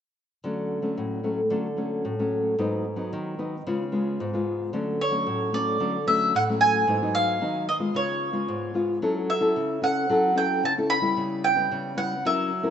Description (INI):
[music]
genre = samba and choro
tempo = 112 BPM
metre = 4/4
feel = straight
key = D major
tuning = A4 = 440 Hz
[part]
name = nylon-string guitar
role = accompaniment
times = 0.4-12.7 s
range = G#2 to A#4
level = -26 LUFS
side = left 1 dB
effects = none
[part]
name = bowl-back mandolin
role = melody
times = 5.0-12.7 s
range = C#5 to B5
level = -24 LUFS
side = right 1 dB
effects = none
[sound]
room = moderate plate reverb, RT60 2.9 s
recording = rough home demo mix, nothing above 8.0 kHz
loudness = -23 LUFS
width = side -8 dB against mid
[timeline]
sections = 0.4-4.7 A section; 4.7-12.7 B section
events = none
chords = 0.4 Dmaj7; 2.6 G#m7; 3.7 C#7; 4.7 Dmaj7; 6.9 G#m7; 8.0 C#7; 9.0 F#m7; 11.2 C#m7b5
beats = | 0.44 0.97 1.51 2.05 | 2.59 3.12 3.66 4.20 | 4.74 5.27 5.81 6.35 | 6.88 7.42 7.96 8.49 | 9.03 9.57 10.11 10.64 | 11.18 11.71 12.25